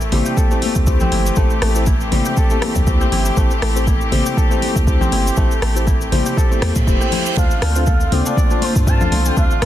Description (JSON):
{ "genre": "afro house", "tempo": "120 BPM", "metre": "4/4", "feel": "swing 55% on 16ths", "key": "unclear", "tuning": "A4 = 440 Hz", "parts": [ { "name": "warm studio string section", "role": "sustained chords", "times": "0.0-9.7 s", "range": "D3 to G4", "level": "-25 LUFS", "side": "left 1 dB", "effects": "sidechain pumping" }, { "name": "kora", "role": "arpeggios", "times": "0.0-9.7 s", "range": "G3 to D5", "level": "-25 LUFS", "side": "left 1 dB", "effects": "sidechain pumping, tape echo" }, { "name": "warm 808-style bass", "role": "bass", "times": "0.0-9.7 s", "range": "E1 to A2", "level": "-20 LUFS", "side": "equal", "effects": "sidechain pumping" }, { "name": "cabasa", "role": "percussion", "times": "0.0-9.6 s", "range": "none", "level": "-30 LUFS", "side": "left 2 dB", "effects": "none" }, { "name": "mellow tine electric piano", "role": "stabs", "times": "0.1-9.5 s", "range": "C4 to C5", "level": "-25 LUFS", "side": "left 3 dB", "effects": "medium stereo tremolo, sidechain pumping, tape echo" }, { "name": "afro-pop drum kit", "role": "drums", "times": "0.1-9.7 s", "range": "hi-hat, rim click, toms", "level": "-25 LUFS", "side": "left 1 dB", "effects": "soft clipping on snare" }, { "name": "congas", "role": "percussion", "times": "0.1-9.7 s", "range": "none", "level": "-26 LUFS", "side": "left 4 dB", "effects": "none" }, { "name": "electronic kick drum", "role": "drums", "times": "0.4-9.5 s", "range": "none", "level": "-17 LUFS", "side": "equal", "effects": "none" }, { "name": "reverse cymbal", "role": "sound effects", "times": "6.6-7.4 s", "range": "none", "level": "-27 LUFS", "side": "right 5 dB", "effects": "none" }, { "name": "expressive portamento lead", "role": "melody", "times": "7.4-9.7 s", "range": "C5 to A5", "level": "-24 LUFS", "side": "equal", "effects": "ensemble chorus, tape echo" } ], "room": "light reverb, studio reverb", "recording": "dense, heavily limited modern master", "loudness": "-14 LUFS", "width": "side -12 dB against mid", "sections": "0.0-9.7 A section", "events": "reverse cymbal 6.6-7.4", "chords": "0.0 Am7; 7.4 Dm7" }